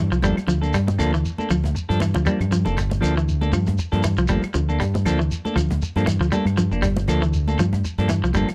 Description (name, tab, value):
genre	afrobeat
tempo	118 BPM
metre	4/4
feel	swing 56% on 16ths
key	G dorian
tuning	A4 = 439 Hz
part	electric guitar at the edge of break-up	arpeggios	0.0-8.5 s	E3 to G3	-27 LUFS	equal	none
part	fingered electric bass	bass	0.0-8.5 s	F1 to G2	-24 LUFS	equal	none
part	cajon	drums	0.1-8.5 s	none	-36 LUFS	equal	none
part	shekere	percussion	0.1-8.5 s	none	-34 LUFS	equal	none
part	clean electric guitar	stabs	0.2-8.5 s	F3 to A4	-28 LUFS	equal	none
part	congas	percussion	0.2-8.5 s	none	-30 LUFS	equal	none
part	claves	percussion	0.4-8.5 s	none	-40 LUFS	equal	none
room	small room ambience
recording	dry, close 1970s-style studio recording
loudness	-21 LUFS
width	mono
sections	0.0-8.5 A section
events	drum fill 2.1-2.8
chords	0.0 Gm9